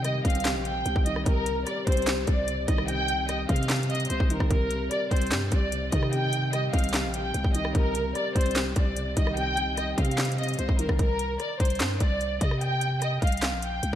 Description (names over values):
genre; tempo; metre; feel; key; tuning
hip hop, trap; 148 BPM; 4/4; half-time; C minor; A4 = 440 Hz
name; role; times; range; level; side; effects
warm studio violin section; melody; 0.0-14.0 s; Bb4 to G5; -29 LUFS; equal; low-pass filter, tape echo
felt-muted upright piano; accompaniment; 0.0-11.0 s; C3 to C4; -33 LUFS; equal; low-pass filter
growling 808-style bass; bass; 0.0-14.0 s; Bb1 to C3; -30 LUFS; equal; none
trap drum kit; drums; 0.0-14.0 s; handclaps, hi-hat, kick drum, rim click, snare drum; -27 LUFS; equal; none
room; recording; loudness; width
moderate lush hall reverb, RT60 1.5 s, small room ambience; dreamy mix soaked in reverb, lossy compression artefacts; -24 LUFS; side -11 dB against mid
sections
0.0-11.0 A section; 11.0-14.0 A section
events
none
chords
0.0 Cm; 11.0 C5